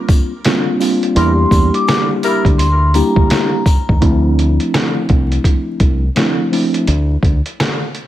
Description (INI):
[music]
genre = hip hop, boom-bap hip-hop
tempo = 84 BPM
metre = 4/4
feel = swing 62% on 16ths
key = D minor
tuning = A4 = 440 Hz
[part]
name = mellow tine electric piano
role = accompaniment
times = 0.0-6.9 s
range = F3 to G4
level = -17 LUFS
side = right 1 dB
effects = medium stereo tremolo, high-pass filter, low-pass filter
[part]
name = trip hop sampler-style drum kit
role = drums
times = 0.1-8.1 s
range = hi-hat, kick drum, snare drum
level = -15 LUFS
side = equal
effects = overdrive, vintage 12-bit sampler grit
[part]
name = sleigh bells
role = percussion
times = 0.1-3.9 s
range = none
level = -33 LUFS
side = left 6 dB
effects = none
[part]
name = vibraphone with hard mallets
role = melody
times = 1.2-4.0 s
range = Bb5 to D6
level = -20 LUFS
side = left 1 dB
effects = high-pass filter, low-pass filter, ping-pong delay
[part]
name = warm horn section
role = stabs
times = 1.2-2.5 s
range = G3 to Bb4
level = -22 LUFS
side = left 3 dB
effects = high-pass filter, low-pass filter, ping-pong delay
[part]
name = deep dub fingered electric bass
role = bass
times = 1.2-7.4 s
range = C2 to E2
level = -14 LUFS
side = equal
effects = none
[sound]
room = light reverb, small room ambience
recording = vinyl crackle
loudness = -12 LUFS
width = side -13 dB against mid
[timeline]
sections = 0.0-4.0 A section; 4.0-8.1 B section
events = break 0.0-1.2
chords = 0.0 C9sus4; 1.2 Em7b5; 4.0 Dm9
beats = 0.45 | 1.16 1.88 2.59 3.31 | 4.02 4.73 5.45 6.16 | 6.88 7.59